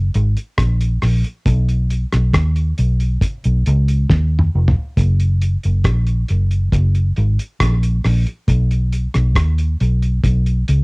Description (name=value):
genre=dub reggae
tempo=68 BPM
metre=4/4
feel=straight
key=unclear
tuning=A4 = 440 Hz
part: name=vintage muted fingered electric bass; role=bass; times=0.0-10.8 s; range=E#1 to D#2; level=-15 LUFS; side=equal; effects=none
part: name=cloth-damped thuddy drum kit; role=drums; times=0.1-10.8 s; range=hi-hat, kick drum, rim click, snare drum, toms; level=-19 LUFS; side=equal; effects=cassette tape
room=little or no reverb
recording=home recording on cassette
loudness=-14 LUFS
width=side -35 dB against mid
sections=0.0-10.8 A section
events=drum fill 4.1-5.0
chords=none